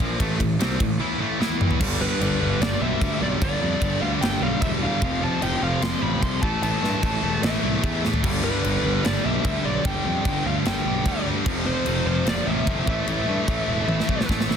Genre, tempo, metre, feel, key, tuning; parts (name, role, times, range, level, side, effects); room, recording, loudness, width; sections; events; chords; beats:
heavy metal; 149 BPM; 4/4; straight; A4 = 436 Hz
distorted electric guitar; riff; 0.0-14.6 s; F2 to E4; -27 LUFS; left 13 dB; overdrive
scooped high-gain guitar; riff; 0.0-14.6 s; F2 to E4; -27 LUFS; right 10 dB; distortion
fuzz picked electric bass; bass; 0.0-14.5 s; E1 to G2; -28 LUFS; equal; overdrive
tight metal drum kit; drums; 0.0-14.6 s; crash cymbal, kick drum, ride cymbal, snare drum, toms; -26 LUFS; equal
high-gain lead guitar; melody; 2.0-14.3 s; B4 to C6; -28 LUFS; left 1 dB; distortion
small room reverb; dense, heavily limited modern master; -20 LUFS; side -7 dB against mid
0.0-1.8 A section; 1.8-14.6 B section
drum fill 1.4-1.8, 8.0, 13.9-14.6; half time 1.8-14.6
0.0 Am; 1.4 E5; 1.8 G5; 5.0 F5; 6.4 A5; 8.2 G5; 11.5 F5; 12.9 A5
| 0.20 0.60 1.00 1.40 | 1.80 2.21 2.61 3.01 | 3.41 3.81 4.21 4.62 | 5.02 5.42 5.82 6.22 | 6.63 7.03 7.43 7.83 | 8.24 8.64 9.04 9.45 | 9.85 10.25 10.66 11.06 | 11.46 11.87 12.27 12.67 | 13.08 13.48 13.89 14.29